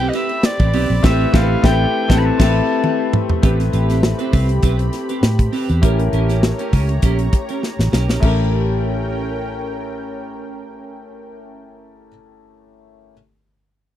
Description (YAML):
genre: polished 1980s jazz-funk pop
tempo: 100 BPM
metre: 4/4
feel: swing 54% on 16ths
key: unclear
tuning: A4 = 439 Hz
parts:
  - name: breathy soprano saxophone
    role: melody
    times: 0.0-3.1 s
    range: D5 to B5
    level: -23 LUFS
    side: equal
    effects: none
  - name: clear concert grand piano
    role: accompaniment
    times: 0.0-13.1 s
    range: A3 to B4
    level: -23 LUFS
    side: left 4 dB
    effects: lush chorus
  - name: lush unison pad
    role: sustained chords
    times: 0.0-11.4 s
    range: C4 to B5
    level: -29 LUFS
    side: equal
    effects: chorus
  - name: clean electric guitar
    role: riff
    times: 0.0-12.1 s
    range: C4 to B4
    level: -25 LUFS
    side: right 6 dB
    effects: lush chorus
  - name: vintage muted fingered electric bass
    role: bass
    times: 0.0-12.1 s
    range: A1 to A2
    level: -18 LUFS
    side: equal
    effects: none
  - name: tight funk drum kit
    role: drums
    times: 0.0-8.4 s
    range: crash cymbal, hi-hat, kick drum, ride cymbal, snare drum, toms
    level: -17 LUFS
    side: equal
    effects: none
room: little or no reverb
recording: dry, close 1970s-style studio recording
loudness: -14 LUFS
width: side -11 dB against mid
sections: 0.0-3.4 A section; 3.4-8.2 B section; 8.2-10.6 C section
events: band accent 1.0-3.4; drum fill 2.8-3.4, 7.6-8.2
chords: 0.0 Am9; 5.8 A7b9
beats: 0.44 | 1.04 1.64 2.23 2.83 | 3.43 4.03 4.63 5.23 | 5.83 6.43 7.03 7.62 | 8.22 8.82 9.42 10.02